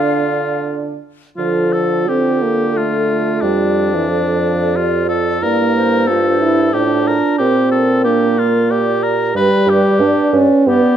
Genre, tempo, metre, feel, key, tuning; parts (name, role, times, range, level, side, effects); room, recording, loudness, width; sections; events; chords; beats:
classical, slow romantic movement for wind quintet; 90 BPM; 3/4; rubato; D minor; A4 = 439 Hz
mellow hollow silver concert flute; melody; 0.0-11.0 s; A4 to F5; -22 LUFS; left 7 dB
warm oboe; second line; 0.0-11.0 s; D4 to B4; -20 LUFS; left 3 dB
dark clarinet; accompaniment; 0.0-11.0 s; D4 to D5; -22 LUFS; right 12 dB
warm French horn; accompaniment; 0.0-11.0 s; E3 to F4; -16 LUFS; right 1 dB
mellow bassoon; bass; 0.0-10.8 s; F2 to D3; -20 LUFS; right 4 dB
light reverb; close, detailed microphones; -12 LUFS; side -9 dB against mid
0.0-1.4 A section; 1.4-11.0 A section
0.0 Dm; 3.4 Dm/F; 5.4 Gm7; 7.4 Gm/Bb; 9.3 G
0.62 | 1.39 2.09 2.77 | 3.43 4.10 4.76 | 5.43 6.08 6.74 | 7.40 8.05 8.70 | 9.35 10.00 10.67